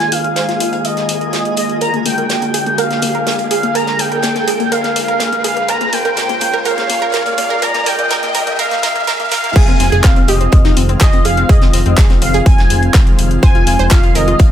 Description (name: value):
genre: progressive house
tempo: 124 BPM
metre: 4/4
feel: straight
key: F minor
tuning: A4 = 438 Hz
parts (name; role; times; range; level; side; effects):
- expressive synth lead; melody; 0.0-14.5 s; Eb5 to Bb5; -18 LUFS; equal; ensemble chorus, sidechain pumping, dub echo
- airy breathy pad; sustained chords; 0.0-14.5 s; Db3 to G5; -22 LUFS; equal; chorus, sidechain pumping
- analog pluck; arpeggios; 0.0-14.5 s; Bb3 to F5; -20 LUFS; right 1 dB; chorus, sidechain pumping, ping-pong delay
- fat analog bass; bass; 0.0-14.5 s; F1 to F2; -20 LUFS; equal; none
- deep house drum kit; drums; 0.0-14.5 s; crash cymbal, handclaps, hi-hat; -22 LUFS; left 2 dB; sidechain pumping on hats, high-pass filter on hats, sidechain pumping on cymbals, high-pass filter on cymbals, high-pass filter on snare, high-pass filter on room
- loose indie drum kit; drums; 0.0-14.5 s; hi-hat, snare drum; -25 LUFS; right 2 dB; sidechain pumping on hats, high-pass filter on hats, high-pass filter on snare, high-pass filter on room
- riser; sound effects; 0.0-9.6 s; none; -24 LUFS; equal; none
- twinkling granular texture; texture; 0.0-14.5 s; Ab4 to F5; -29 LUFS; right 1 dB; built-in reverb, sidechain pumping
- electronic kick drum; drums; 9.6-14.5 s; none; -9 LUFS; equal; overdrive
room: light reverb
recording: high-pass filter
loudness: -11 LUFS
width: side -10 dB against mid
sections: 0.0-9.6 A section; 9.6-14.5 B section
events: build-up 0.0-9.6; riser 0.0-9.6; filter sweep on synth arpeggio sound 0.0-9.6; drop 9.6-14.5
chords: 0.0 Fm7; 1.8 Bb7; 5.7 Db6; 9.6 Fm7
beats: 0.36 0.85 1.33 | 1.82 2.30 2.78 3.27 | 3.75 4.24 4.72 5.20 | 5.69 6.17 6.65 7.14 | 7.62 8.11 8.59 9.07 | 9.56 10.04 10.53 11.01 | 11.49 11.98 12.46 12.95 | 13.43 13.91 14.40